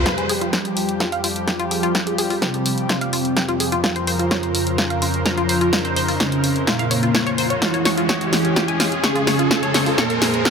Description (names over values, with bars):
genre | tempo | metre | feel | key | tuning
melodic techno | 127 BPM | 4/4 | straight | F harmonic minor | A4 = 440 Hz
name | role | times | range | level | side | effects
lush unison pad | sustained chords | 0.0-10.5 s | Db3 to C5 | -26 LUFS | left 1 dB | chorus, sidechain pumping
tight sequenced synth | arpeggios | 0.0-10.5 s | F4 to Db6 | -25 LUFS | left 2 dB | chorus, sidechain pumping, ping-pong delay
overtone-sweeping drone | drone | 0.0-10.5 s | F2 | -30 LUFS | right 1 dB | chorus, built-in reverb, phaser, sidechain pumping
riser | sound effects | 0.0-10.5 s | none | -28 LUFS | equal | none
mellow synth brass | melody | 0.1-10.5 s | Bb2 to G4 | -23 LUFS | right 1 dB | chorus, sidechain pumping, ping-pong delay
electronic kick drum | drums | 0.1-10.5 s | none | -29 LUFS | equal | high-pass filter on kick
punchy analog drum machine | drums | 0.1-10.5 s | hi-hat, snare drum | -22 LUFS | equal | low-pass filter on snare, sidechain pumping on hats, low-pass filter on hats
room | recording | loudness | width
light reverb, digital ambience | none | -17 LUFS | side -6 dB against mid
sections
0.1-10.5 A section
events
build-up 0.1-10.5; drum fill 0.1-10.5; riser 0.1-10.5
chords
0.1 Fsus2; 3.8 Bbmadd9; 7.6 Db